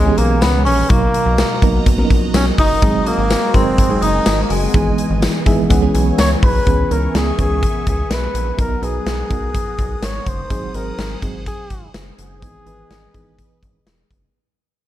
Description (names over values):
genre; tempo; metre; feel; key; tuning
1980s-style pop; 125 BPM; 4/4; straight; C# dorian; A4 = 439 Hz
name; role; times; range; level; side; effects
warm flugelhorn; melody; 0.0-13.8 s; G#3 to C#5; -21 LUFS; left 1 dB; tape echo
synth chime; second line; 0.0-5.2 s; G#5 to D#6; -27 LUFS; left 4 dB; ensemble chorus, tape echo
FM electric piano with auto-pan; accompaniment; 0.0-14.4 s; B2 to B5; -21 LUFS; right 3 dB; none
phased analog pad; sustained chords; 0.0-14.3 s; B2 to D#6; -28 LUFS; equal; phaser, chorus
rubbery square bass; bass; 0.0-14.3 s; E1 to C#2; -20 LUFS; equal; none
big rock drum kit; drums; 0.2-14.2 s; hi-hat, kick drum, snare drum, tambourine; -18 LUFS; equal; none
room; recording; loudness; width
light reverb, small room ambience; dark, warm production; -14 LUFS; side -13 dB against mid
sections
0.0-6.7 A section; 6.7-14.3 B section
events
FM electric piano fill 5.2-6.7; fade-out 6.7-14.3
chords
0.0 C#m7; 0.9 Bmaj7; 2.8 G#7; 4.7 Emaj7/G#; 5.7 C#m7; 8.6 Bmaj7; 10.5 G#7; 12.4 Emaj7/G#